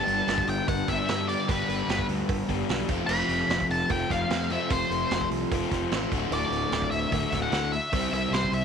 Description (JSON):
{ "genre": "classic rock", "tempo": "149 BPM", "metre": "4/4", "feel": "straight", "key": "unclear", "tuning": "A4 = 436 Hz", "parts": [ { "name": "octave-fuzz lead guitar", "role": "melody", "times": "0.0-8.6 s", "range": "B4 to B5", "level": "-29 LUFS", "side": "left 2 dB", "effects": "distortion" }, { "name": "overdriven semi-hollow guitar", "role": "riff", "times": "0.0-8.6 s", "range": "D2 to C5", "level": "-30 LUFS", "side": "left 11 dB", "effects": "spring reverb" }, { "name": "overdriven semi-hollow guitar", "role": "riff", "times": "0.0-8.6 s", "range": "D2 to C5", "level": "-32 LUFS", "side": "right 12 dB", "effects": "none" }, { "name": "fuzz fingered electric bass", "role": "bass", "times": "0.1-8.6 s", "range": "D1 to G2", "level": "-33 LUFS", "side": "equal", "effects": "overdrive" }, { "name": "vintage drum kit", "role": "drums", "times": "0.1-8.6 s", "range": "crash cymbal, hi-hat, kick drum, snare drum", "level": "-32 LUFS", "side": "right 3 dB", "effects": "none" }, { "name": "cowbell", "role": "percussion", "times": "0.3-8.4 s", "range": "none", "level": "-41 LUFS", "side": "right 12 dB", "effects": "none" } ], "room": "light reverb, small room ambience", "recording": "1960s-style stereo with parts hard left and right", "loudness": "-24 LUFS", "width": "side -7 dB against mid", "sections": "0.0-8.6 A section", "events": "none", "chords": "0.0 G; 2.9 F; 6.1 D; 7.9 C", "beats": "0.28 0.69 1.09 | 1.49 1.89 2.29 2.70 | 3.10 3.50 3.90 4.31 | 4.71 5.11 5.51 5.92 | 6.32 6.72 7.12 7.53 | 7.93 8.33" }